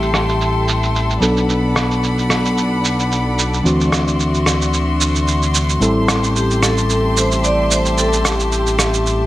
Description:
nu-disco, nu disco; 111 BPM; 4/4; swing 54% on 16ths; A dorian; A4 = 440 Hz
vibraphone with hard mallets; melody; 0.0-0.6, 6.4-9.3 s; G4 to D5; -21 LUFS; equal; vintage 12-bit sampler grit, tape echo
mellow tine electric piano; accompaniment; 0.0-9.3 s; E3 to A4; -20 LUFS; equal; tape echo
rich studio violin section; sustained chords; 0.0-9.3 s; F#4 to C6; -22 LUFS; left 2 dB
fat analog bass; bass; 0.0-9.3 s; A1 to D2; -19 LUFS; equal
electronic shaker and rim click; drums; 0.0-9.2 s; -20 LUFS; right 2 dB; overdrive, low-pass filter on hats, low-pass filter on perc, low-pass filter on snare, low-pass filter on room
light reverb, small room ambience; -14 LUFS; side -15 dB against mid
0.0-9.3 A section
0.0 Am7; 1.2 Bm7; 3.6 D9; 5.8 Am7
0.41 0.95 | 1.49 2.03 2.57 3.11 | 3.65 4.19 4.73 5.27 | 5.81 6.35 6.89 7.43 | 7.97 8.52 9.06

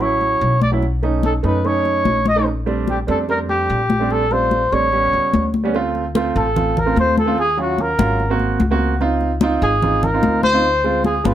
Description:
Afro-Cuban jazz; 147 BPM; 4/4; straight; A4 = 438 Hz
breathy trumpet; melody; 0.0-11.3 s; Gb4 to D#5; -18 LUFS; equal
warm grand piano; accompaniment; 0.0-11.3 s; F#3 to Gb4; -21 LUFS; right 4 dB
upright bass; bass; 0.0-11.3 s; G1 to F#2; -22 LUFS; left 1 dB
congas; percussion; 0.0-11.3 s; -21 LUFS; left 3 dB
light reverb; -15 LUFS; side -11 dB against mid
0.0-5.7 A section; 5.7-11.3 B section
0.0 Dmaj9 (rootless); 0.8 B9; 2.5 Bbmaj13; 4.9 A7; 5.7 Dm7; 7.4 Ebm9; 8.2 Ab7; 9.0 Dbmaj9; 10.6 Dm7b5
0.00 0.41 | 0.82 1.24 1.65 2.06 | 2.47 2.88 3.29 3.70 | 4.11 4.52 4.93 5.34 | 5.75 6.16 6.57 6.97 | 7.38 7.79 8.20 8.61 | 9.02 9.42 9.83 10.24 | 10.65 11.05

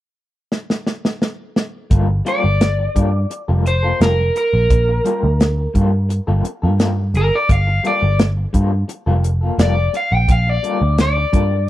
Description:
straight-eighth soul blues; 86 BPM; 4/4; straight; G minor; A4 = 440 Hz
warm soul drum kit; drums; 0.5-11.5 s; hi-hat, kick drum, snare drum; -17 LUFS; equal
electric guitar through a small old amp; stabs; 1.9-11.6 s; G3 to A4; -24 LUFS; left 3 dB; tremolo
vintage muted picked electric bass; bass; 1.9-11.7 s; F1 to G2; -16 LUFS; equal
overdriven semi-hollow guitar; melody; 2.3-11.7 s; Bb4 to G5; -19 LUFS; equal; slapback echo
little or no reverb; -14 LUFS; side -14 dB against mid
0.0-1.9 A section; 1.9-11.7 B section
drum fill 0.5-1.9
0.0 N.C.; 1.9 Gm9
0.51 1.21 | 1.91 2.61 3.31 4.00 | 4.70 5.40 6.10 6.79 | 7.49 8.19 8.89 9.59 | 10.29 10.98 11.68

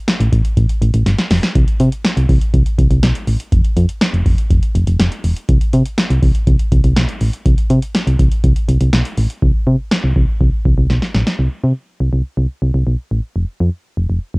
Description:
synth-pop; 122 BPM; 4/4; straight; A4 = 440 Hz
electro analog drum machine; drums; 0.1-11.4 s; hi-hat, kick drum, snare drum; -15 LUFS; equal; cassette tape
solid FM bass; bass; 0.2-14.4 s; E1 to C3; -13 LUFS; equal
digital ambience; home recording on cassette; -13 LUFS; side -30 dB against mid
0.0-9.4 A section; 9.4-11.4 B section; 11.4-14.4 C section
drum fill 1.1-1.6, 10.9-11.4
0.08 0.57 1.06 | 1.55 2.05 2.54 3.03 | 3.52 4.01 4.51 5.00 | 5.49 5.98 6.47 6.96 | 7.46 7.95 8.44 8.93 | 9.42 9.91 10.41 10.90 | 11.39 11.88 12.37 12.87 | 13.36 13.85 14.34

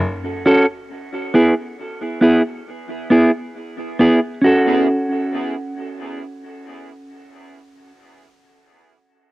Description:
reggae; 68 BPM; 4/4; straight; F# minor; A4 = 441 Hz
semi-hollow electric guitar; accompaniment; 0.5-8.0 s; B3 to A4; -16 LUFS; right 1 dB; harmonic tremolo, cassette tape, dub echo, plate reverb
moderate booth ambience, RT60 0.2 s; home recording on cassette; -14 LUFS; side -19 dB against mid
0.0-4.4 A section; 4.4-8.0 B section
0.0 F#m; 0.9 E; 4.4 F#m
0.02 | 0.90 1.78 2.67 3.55 | 4.43 5.32 6.20 7.09

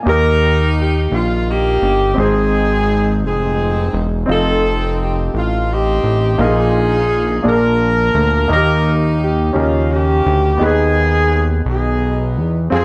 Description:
slow gospel; 57 BPM (dotted quarters); 6/8; straight; Eb major; A4 = 439 Hz
mellow saxophone section; melody; 0.0-12.8 s; Bb3 to Bb4; -19 LUFS; equal
warm grand piano; accompaniment; 0.0-12.8 s; Ab2 to C5; -22 LUFS; equal
fat analog bass; bass; 0.1-12.8 s; Fb1 to F2; -19 LUFS; equal
moderate large studio reverb, RT60 1.3 s; -15 LUFS; mono
0.1-12.8 A section
0.1 Eb; 2.2 Ab; 4.3 F7; 6.4 Bbsus4; 7.4 Bb; 8.5 Eb; 9.6 Eb7; 10.6 Abm/Eb
| 0.06 1.12 | 2.18 3.23 | 4.29 5.34 | 6.39 7.45 | 8.50 9.55 | 10.61 11.66 | 12.71

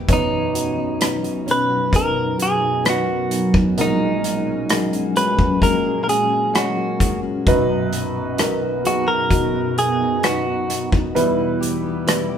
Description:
pop ballad; 65 BPM; 4/4; straight; B major; A4 = 440 Hz
dark baby grand piano; accompaniment; 0.0-12.4 s; A#1 to C#5; -23 LUFS; right 1 dB
ethereal airy pad; sustained chords; 0.0-12.4 s; E2 to G4; -24 LUFS; left 1 dB; ensemble chorus, built-in reverb, phaser
fingerpicked steel-string acoustic guitar; arpeggios; 0.0-12.4 s; B2 to G#4; -29 LUFS; left 4 dB
direct-recorded clean electric guitar; melody; 0.1-10.9 s; D#4 to B4; -21 LUFS; right 1 dB
loose indie drum kit; drums; 0.1-12.3 s; hi-hat, kick drum, rim click; -21 LUFS; equal
moderate studio reverb, RT60 0.8 s; band playing live in one room; -17 LUFS; side -8 dB against mid
0.0-12.4 A section
0.1 Badd9; 3.8 F#add9/A#; 7.5 B; 11.2 Em
| 0.08 1.01 1.93 2.85 | 3.77 4.70 5.62 6.54 | 7.47 8.39 9.31 10.24 | 11.16 12.08

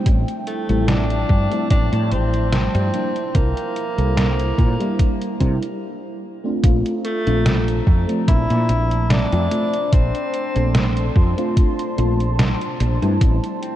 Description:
vaporwave; 73 BPM; 4/4; swing 54% on 16ths; Bb lydian; A4 = 440 Hz
mellow FM electric piano; accompaniment; 0.0-13.8 s; F3 to A4; -24 LUFS; equal; analog chorus, analog delay
warbly tape-like pad; sustained chords; 0.0-13.8 s; F3 to C6; -30 LUFS; equal; chorus, built-in reverb
woody fretless electric bass; bass; 0.1-13.4 s; A1 to C3; -19 LUFS; equal; tube saturation, ensemble chorus
detuned 8-bit digital drum machine; drums; 0.1-13.8 s; hi-hat, snare drum; -24 LUFS; right 1 dB
electronic kick drum; drums; 0.1-13.4 s; -16 LUFS; equal
mellow tenor saxophone; melody; 0.5-13.8 s; A3 to E4; -25 LUFS; left 1 dB; tape echo
moderate huge ambient reverb, RT60 4.1 s; dreamy mix soaked in reverb, cassette tape; -16 LUFS; side -12 dB against mid
0.0-6.6 A section; 6.6-13.8 B section
break 5.8-6.6
0.1 Fmaj9/A; 2.9 C7; 6.6 Bbmaj9; 13.2 Fmaj9/A
| 0.06 0.88 1.71 2.53 | 3.35 4.17 4.99 5.82 | 6.64 7.46 8.28 9.10 | 9.93 10.75 11.57 12.39 | 13.21

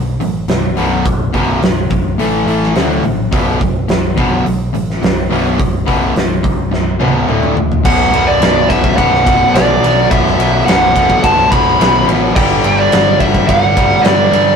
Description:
hard rock; 106 BPM; 4/4; straight; B minor; A4 = 440 Hz
distorted electric guitar; riff; 0.0-14.6 s; B1 to A3; -20 LUFS; right 8 dB; overdrive
overdriven semi-hollow guitar; riff; 0.0-14.6 s; B1 to A3; -16 LUFS; left 4 dB
overdriven picked electric bass; bass; 0.0-14.6 s; B0 to G2; -20 LUFS; equal
big rock drum kit; drums; 0.2-14.5 s; crash cymbal, hi-hat, kick drum, ride cymbal, snare drum, toms; -15 LUFS; equal
dark smooth lead guitar; melody; 7.9-14.6 s; D5 to B5; -13 LUFS; right 1 dB; overdrive
light reverb; rough rehearsal-room recording, warm saturation; -10 LUFS; side -6 dB against mid
0.0-7.8 A section; 7.8-14.6 B section
drum fill 6.7-7.8
0.0 B5; 2.2 A5; 2.8 D5; 3.3 B5; 7.3 D5; 7.8 Bm; 12.4 G5
0.49 | 1.06 1.62 2.19 2.76 | 3.32 3.89 4.46 5.02 | 5.59 6.16 6.72 7.29 | 7.85 8.41 8.98 9.54 | 10.11 10.67 11.23 11.79 | 12.36 12.92 13.48 14.05

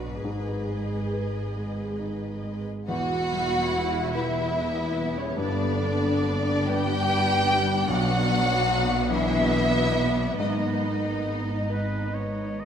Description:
cinematic, emotional film score for orchestra; 47 BPM (dotted quarters); 6/8; uneven beats, rubato; A4 = 436 Hz
warm symphonic violin section; melody; 0.0-12.5 s; C#5 to G5; -30 LUFS; left 2 dB
warm symphonic violin section; second line; 0.0-12.5 s; C#4 to B4; -34 LUFS; left 2 dB
dark concert grand piano; accompaniment; 0.0-12.7 s; B1 to B4; -34 LUFS; left 2 dB
warm symphonic viola section; accompaniment; 0.0-12.7 s; B3 to G#4; -31 LUFS; right 2 dB
concert harp; arpeggios; 0.0-12.7 s; E2 to B4; -35 LUFS; left 6 dB
dark symphonic double bass section; bass; 0.0-12.7 s; E1 to B1; -33 LUFS; right 2 dB
rich symphonic cello section; bass; 0.0-12.7 s; E2 to B2; -32 LUFS; right 3 dB
hollow small flute group; second line; 2.9-12.5 s; C#5 to G5; -33 LUFS; right 2 dB
dark French horn section; sustained chords; 2.9-12.5 s; C#3 to F#4; -31 LUFS; left 2 dB
clear oboe; second line; 11.7-12.7 s; B4 to D#5; -37 LUFS; right 1 dB
wet scoring stage reverb, RT60 2.0 s; -23 LUFS; side -8 dB against mid
0.0-2.9 A section; 2.9-12.7 B section
0.2 G#m; 2.9 Em; 5.4 G; 7.9 Bm; 10.4 G#m
| 0.24 1.56 | 2.89 4.14 | 5.38 6.68 | 7.89 9.11 | 10.40 11.70

